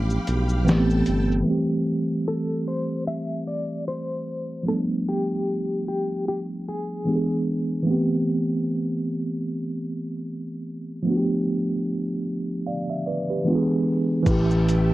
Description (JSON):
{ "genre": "lo-fi hip hop", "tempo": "75 BPM", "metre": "4/4", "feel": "swing 58% on 16ths", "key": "A minor", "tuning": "A4 = 440 Hz", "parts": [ { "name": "semi-hollow electric guitar", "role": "melody", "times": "0.0-7.4 s", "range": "G4 to E5", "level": "-29 LUFS", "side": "left 2 dB", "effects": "tremolo, analog delay" }, { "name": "tine electric piano", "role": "accompaniment", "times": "0.0-14.9 s", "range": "E3 to F5", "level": "-23 LUFS", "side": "right 1 dB", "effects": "medium stereo tremolo" }, { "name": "string machine, violins", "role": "sustained chords", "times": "0.0-1.5, 14.3-14.9 s", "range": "G4 to D6", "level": "-34 LUFS", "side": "equal", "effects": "ensemble chorus" }, { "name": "smooth gliding synth bass", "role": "bass", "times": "0.0-1.4, 14.3-14.9 s", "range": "G1 to B1", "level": "-23 LUFS", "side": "equal", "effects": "none" }, { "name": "lo-fi sampler-style drum kit", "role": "drums", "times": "0.1-1.5, 14.3-14.9 s", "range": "crash cymbal, hi-hat, kick drum, shaker, snare drum", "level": "-25 LUFS", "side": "equal", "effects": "vintage 12-bit sampler grit" } ], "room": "moderate studio reverb, RT60 0.5 s", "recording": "dark, warm production, vinyl crackle, low-pass filter", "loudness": "-22 LUFS", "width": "side -17 dB against mid", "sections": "0.0-1.5 A section; 1.5-14.3 B section", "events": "break 0.0-1.5; filter sweep 1.5-14.3", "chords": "0.0 G7; 0.7 Am9; 1.5 Am7; 4.7 G7; 7.1 E7; 7.9 Am7; 11.1 G7; 13.5 E7; 14.3 A7(no3)" }